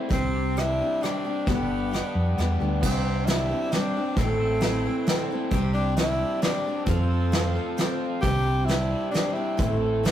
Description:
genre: folk rock and heartland rock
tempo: 133 BPM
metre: 3/4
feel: straight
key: C major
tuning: A4 = 439 Hz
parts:
  - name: picked steel-string acoustic guitar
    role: accompaniment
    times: 0.0-10.1 s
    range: G2 to A4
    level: -29 LUFS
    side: left 1 dB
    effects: none
  - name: raw garage guitar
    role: riff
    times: 0.0-10.1 s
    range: G2 to A4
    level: -33 LUFS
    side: equal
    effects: overdrive
  - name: clear tenor saxophone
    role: melody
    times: 0.1-9.8 s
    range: B3 to G4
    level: -29 LUFS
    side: equal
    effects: none
  - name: hollow-body short-scale fingered electric bass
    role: bass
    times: 0.1-10.1 s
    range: G1 to F2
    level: -27 LUFS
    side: equal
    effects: none
  - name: soft brush drum kit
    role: drums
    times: 0.1-10.1 s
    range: crash cymbal, hi-hat, kick drum, rim click, snare drum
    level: -27 LUFS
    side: equal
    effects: none
  - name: mellow tonewheel organ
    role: sustained chords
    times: 2.8-10.1 s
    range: G3 to A4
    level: -38 LUFS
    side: right 1 dB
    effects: none
room: moderate stone room reverb, RT60 1.1 s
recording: rough rehearsal-room recording, warm saturation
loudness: -22 LUFS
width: side -11 dB against mid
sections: 0.0-2.8 A section; 2.8-10.1 A section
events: none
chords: 0.1 Csus2; 1.4 G; 2.8 Csus2; 4.2 Am; 5.5 Csus2; 6.9 F; 8.2 Csus2; 9.6 Am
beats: | 0.09 0.54 1.00 | 1.45 1.90 2.36 | 2.81 3.26 3.71 | 4.17 4.62 5.07 | 5.52 5.97 6.43 | 6.88 7.33 7.78 | 8.23 8.69 9.14 | 9.59 10.04

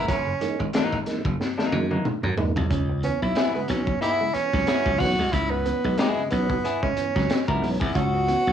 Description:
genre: funk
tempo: 92 BPM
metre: 4/4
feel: swing 56% on 16ths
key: C# dorian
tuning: A4 = 441 Hz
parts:
  - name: breathy tenor saxophone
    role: melody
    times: 0.0-8.5 s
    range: G#3 to F#4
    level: -25 LUFS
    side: right 2 dB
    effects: cassette tape
  - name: semi-hollow electric guitar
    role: accompaniment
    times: 0.0-8.0 s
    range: E3 to A#4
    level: -28 LUFS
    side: left 5 dB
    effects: cassette tape
  - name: electric guitar through a small old amp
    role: riff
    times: 0.0-8.4 s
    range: F#3 to C#4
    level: -33 LUFS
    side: right 6 dB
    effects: analog chorus, cassette tape
  - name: slap bass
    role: bass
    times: 0.0-8.5 s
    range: F#1 to F#2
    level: -26 LUFS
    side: left 1 dB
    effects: none
  - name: crunchy breakbeat drum kit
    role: drums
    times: 0.1-8.5 s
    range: hi-hat, kick drum, snare drum, toms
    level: -27 LUFS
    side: left 1 dB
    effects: cassette tape
  - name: mellow tonewheel organ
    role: stabs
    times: 0.4-8.5 s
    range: C#3 to D#4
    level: -32 LUFS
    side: right 5 dB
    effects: chorus vibrato, slow rotary speaker, cassette tape
room: light reverb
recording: home recording on cassette, small room ambience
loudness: -21 LUFS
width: side -9 dB against mid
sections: 0.0-2.7 A section; 2.7-8.5 B section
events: drum fill 1.4-2.7; tenor saxophone solo 2.7-8.5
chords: 0.1 F#13; 2.7 C#m7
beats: | 0.09 0.74 1.40 2.06 | 2.71 3.37 4.02 4.68 | 5.33 5.99 6.64 7.30 | 7.95

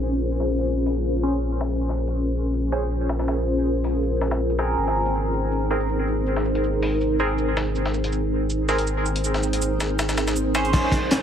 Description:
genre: drum and bass, jungle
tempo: 161 BPM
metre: 4/4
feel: straight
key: unclear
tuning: A4 = 440 Hz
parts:
  - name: granular cloud pad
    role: sustained chords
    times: 0.0-11.2 s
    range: C4 to C5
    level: -24 LUFS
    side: equal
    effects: built-in reverb
  - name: soft dub sub bass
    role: bass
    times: 0.0-10.7 s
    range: Ab1 to Bb1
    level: -26 LUFS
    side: equal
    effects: none
  - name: breakbeat sampler-style drum kit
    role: drums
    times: 0.1-10.7 s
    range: hi-hat, shaker, snare drum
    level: -30 LUFS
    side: left 1 dB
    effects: high-pass filter on perc, high-pass filter on hats, high-pass filter on snare
  - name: band-passed chord stab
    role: stabs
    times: 1.2-10.9 s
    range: C4 to C5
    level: -28 LUFS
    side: right 1 dB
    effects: phaser, dub echo
  - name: crunchy breakbeat drum kit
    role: drums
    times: 10.7-11.2 s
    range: crash cymbal, hi-hat, kick drum, snare drum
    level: -20 LUFS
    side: equal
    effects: none
room: light reverb, small room ambience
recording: heavily compressed radio sound, multiband compression, low-pass filter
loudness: -21 LUFS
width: side -8 dB against mid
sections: 0.0-10.7 A section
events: filter sweep on ambient pad 0.0-10.7; filter sweep 0.0-10.7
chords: 0.0 Bbm7; 4.8 Abadd9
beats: | 0.30 0.67 1.05 1.42 | 1.79 2.17 2.54 2.91 | 3.28 3.66 4.03 4.40 | 4.77 5.15 5.52 5.89 | 6.26 6.64 7.01 7.38 | 7.75 8.13 8.50 8.87 | 9.25 9.62 9.99 10.36 | 10.74 11.11

